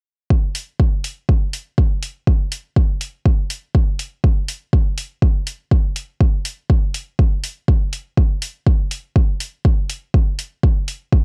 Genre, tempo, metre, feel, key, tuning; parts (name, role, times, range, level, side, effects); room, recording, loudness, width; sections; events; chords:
melodic techno; 122 BPM; 4/4; straight
electronic kick drum; drums; 0.3-11.2 s; -17 LUFS; equal; overdrive, cassette tape
electronic hi-hat; drums; 0.6-11.0 s; -29 LUFS; equal; overdrive, cassette tape
little or no reverb; home recording on cassette; -19 LUFS; mono
0.3-11.2 A section